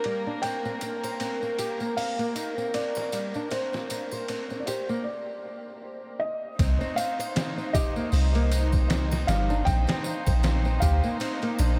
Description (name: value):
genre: trip hop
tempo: 78 BPM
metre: 4/4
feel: swing 57% on 16ths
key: C minor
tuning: A4 = 442 Hz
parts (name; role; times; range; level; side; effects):
- dark studio violin section; sustained chords; 0.0-11.8 s; Bb3 to C5; -36 LUFS; equal; none
- nylon-string guitar; arpeggios; 0.0-11.8 s; G3 to C5; -36 LUFS; equal; diffuse ambient delay
- trip hop sampler-style drum kit; drums; 0.0-11.8 s; hi-hat, kick drum, ride cymbal, snare drum; -34 LUFS; equal; overdrive, high-pass filter on cymbals, small room reverb, high-pass filter on hats, high-pass filter on snare, high-pass filter on kick
- felt-muted upright piano; melody; 0.4-11.8 s; C5 to G5; -35 LUFS; equal; tape echo
- tambourine and triangle; percussion; 0.4-11.8 s; none; -45 LUFS; equal; none
- soft 808-style bass; bass; 6.6-11.8 s; G1 to D2; -26 LUFS; equal; none
room: moderate huge ambient reverb, RT60 8.8 s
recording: dreamy mix soaked in reverb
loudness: -27 LUFS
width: mono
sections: 0.0-6.6 A section; 6.6-11.8 B section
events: break 5.1-6.6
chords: 0.4 C7(no3); 3.5 Bb; 6.6 Cm; 9.7 Bb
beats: | 0.43 1.20 1.97 2.74 | 3.51 4.28 5.05 5.82 | 6.59 7.36 8.13 8.90 | 9.67 10.44 11.20